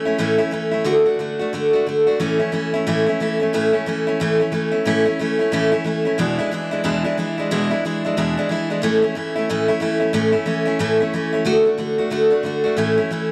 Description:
rock; 181 BPM; 4/4; swing 60% on 8ths; A major; A4 = 440 Hz
picked steel-string acoustic guitar; solo; 0.0-13.3 s; E2 to F#4; -20 LUFS; equal
moderate plate reverb, RT60 3.1 s; -20 LUFS; mono
0.0-10.1 A section; 10.1-13.3 B section
0.0 A; 0.9 D; 2.2 A; 6.2 E7; 8.8 A; 11.5 D; 12.8 A

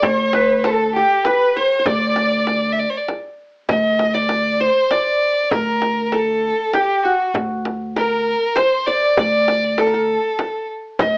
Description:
Arabic maqam ensemble; 98 BPM; 3/4; straight; D maqam rast, D maqam hijaz from 3.7 s; A4 = 442 Hz
clear violin; melody; 0.0-11.2 s; F#4 to E5; -21 LUFS; equal; cassette tape
qanun; second line; 0.0-11.2 s; F#4 to Eb5+25c; -23 LUFS; equal
rich chamber violin section; second line; 0.0-2.7 s; G4 to D5; -22 LUFS; equal
upright bass; bass; 0.0-11.2 s; D2; -27 LUFS; equal
frame drum; percussion; 0.0-11.1 s; -25 LUFS; equal
wet studio reverb, RT60 0.6 s; home recording on cassette, AM radio sound; -18 LUFS; mono
0.0-3.7 A section; 3.7-11.2 B section

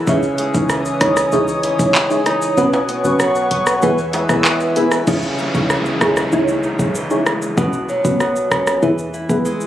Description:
dancehall; 96 BPM; 4/4; straight; C# minor; A4 = 440 Hz
deep mellow chord stab; accompaniment; 0.0-9.7 s; B3 to C#5; -19 LUFS; equal; chorus, phaser
glassy FM pad; sustained chords; 0.0-5.1 s; B4 to E6; -20 LUFS; left 1 dB; ensemble chorus, built-in reverb, sidechain pumping
nylon-string guitar; arpeggios; 0.0-9.7 s; B2 to E4; -20 LUFS; right 1 dB
short 808-style bass; bass; 0.1-9.4 s; B1 to E2; -26 LUFS; equal
afro-pop drum kit; drums; 0.1-9.7 s; crash cymbal, handclaps, hi-hat, kick drum, rim click, shaker; -20 LUFS; equal
maracas and timbales; percussion; 0.1-5.1 s; -29 LUFS; equal
downlifter; sound effects; 5.1-9.7 s; -26 LUFS; equal
moderate lush hall reverb, RT60 2.5 s; recorded on a phone in the room, club reverb; -14 LUFS; side -12 dB against mid
0.0-5.1 A section; 5.1-9.7 B section
kick muted 2.6-5.1
0.1 C#madd9; 2.6 Bsus2; 3.8 E; 5.1 C#madd9; 7.6 Bsus2; 8.8 E

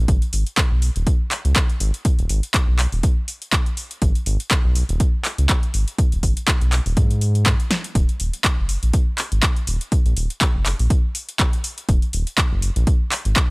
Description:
acid house; 122 BPM; 4/4; swing 56% on 16ths; A4 = 440 Hz
round analog bass; bass; 0.0-13.3 s; Eb1 to Ab2; -19 LUFS; equal; tube saturation, sidechain pumping
electro analog drum machine; drums; 0.1-13.5 s; handclaps, hi-hat, snare drum; -23 LUFS; equal
electronic kick drum; drums; 0.1-13.5 s; -18 LUFS; equal
little or no reverb; dry, gritty hardware recording; -17 LUFS; side -30 dB against mid
0.0-13.5 A section
drum fill 7.7

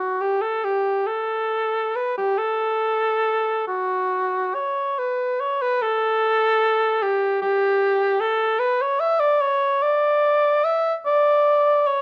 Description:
classical, free, expressive piece for unaccompanied cor anglais; 45-52 BPM (dotted quarters); 6/8; rubato; A4 = 441 Hz
mellow cor anglais; solo; 0.0-12.0 s; F#4 to E5; -21 LUFS; equal
light reverb; dark, warm production; -21 LUFS; mono
0.0-12.0 A section

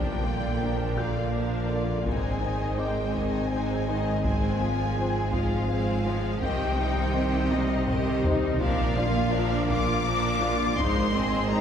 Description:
cinematic, hybrid orchestral and electronic film score; 55 BPM (dotted quarters); 6/8; straight; A4 = 441 Hz
clear symphonic violin section; melody; 0.0-11.6 s; Eb5 to D6; -32 LUFS; left 5 dB
clear symphonic violin section; second line; 0.0-11.6 s; C4 to F5; -34 LUFS; left 2 dB
rich symphonic viola section; accompaniment; 0.0-11.6 s; D3 to F4; -32 LUFS; equal
dark analog pad; sustained chords; 0.0-11.6 s; Eb3 to F5; -32 LUFS; equal; chorus
clear symphonic cello section; bass; 0.0-11.6 s; Ab2 to C3; -33 LUFS; right 3 dB
rich symphonic double bass section; bass; 0.0-11.6 s; Ab1 to C2; -32 LUFS; right 2 dB
soft dub sub bass; bass; 0.0-11.6 s; Ab1 to C2; -34 LUFS; equal
impact; sound effects; 0.0-2.1 s; -37 LUFS; equal
mellow French horn section; sustained chords; 0.6-11.6 s; Bb3 to F4; -37 LUFS; left 1 dB
taiko ensemble; drums; 1.0-11.5 s; -34 LUFS; equal
felt-muted upright piano; texture; 1.0-11.6 s; D4 to G6; -40 LUFS; left 1 dB
wet concert hall reverb, RT60 2.3 s; heard from further back in the room; -24 LUFS; side -8 dB against mid
0.0-11.6 A section
impact 0.0-2.1; drum fill 7.5-8.6
0.0 Bb; 2.1 Ab; 4.2 Fm/Ab; 6.4 Cm; 8.6 Bb; 10.8 Ab

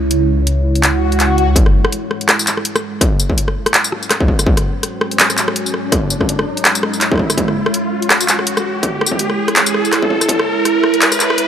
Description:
half-time drum and bass; 165 BPM; 4/4; swing 57% on 16ths, half-time; A4 = 440 Hz
deep dark ambient pad; sustained chords; 0.0-11.5 s; G#3 to C#5; -20 LUFS; right 3 dB; chorus, built-in reverb, sidechain pumping
dark detuned saw bass; bass; 0.0-1.5 s; C#2; -15 LUFS; equal; tube saturation
drum and bass drum kit; drums; 0.1-11.5 s; handclaps, hi-hat, rim click, tambourine; -15 LUFS; equal; overdrive
swell and riser; sound effects; 0.9-11.5 s; -21 LUFS; left 1 dB
electronic kick drum; drums; 1.6-10.4 s; -15 LUFS; equal; distortion
light reverb; high-pass filter; -12 LUFS; side -9 dB against mid
0.0-1.6 A section; 1.6-11.5 B section
swell 0.9-1.6; build-up 1.6-11.5; riser 1.6-11.5; filter sweep on ambient pad 1.6-11.5
0.0 C#m; 1.6 F#sus2; 7.4 C#m

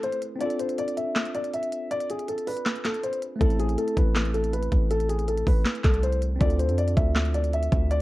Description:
hip hop, trap; 160 BPM; 4/4; half-time; A4 = 440 Hz
dark concert grand piano; melody; 0.0-8.0 s; G#4 to E5; -28 LUFS; equal; low-pass filter, tape echo
tine electric piano; accompaniment; 0.0-8.0 s; A3 to A4; -33 LUFS; left 1 dB; medium stereo tremolo, low-pass filter
trap drum kit; drums; 0.0-8.0 s; handclaps, hi-hat, kick drum, snare drum; -25 LUFS; equal; overdrive
hard-hitting 808-style bass; bass; 3.4-8.0 s; A1 to F2; -25 LUFS; equal
digital ambience; worn, warbling old tape, cassette tape, warbly pitch drift; -23 LUFS; side -17 dB against mid
0.0-8.0 A section
break 0.0-3.4
0.4 Dm7; 3.4 Am; 6.4 Dm7

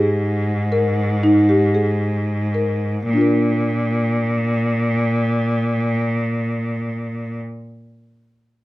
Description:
contemporary instrumental, chamber music in an uneven meter; free time; Bb mixolydian; A4 = 440 Hz
marimba with soft mallets; arpeggios; 0.0-7.5 s; Bb3 to Bb4; -19 LUFS; equal
clear cello; bass; 0.0-7.4 s; Ab2 to Bb2; -19 LUFS; equal
moderate studio reverb, RT60 0.8 s; -17 LUFS; side -17 dB against mid
0.0-3.1 A section; 3.1-6.9 B section
slowing down 0.0-3.1
0.0 Absus2; 3.1 Bb

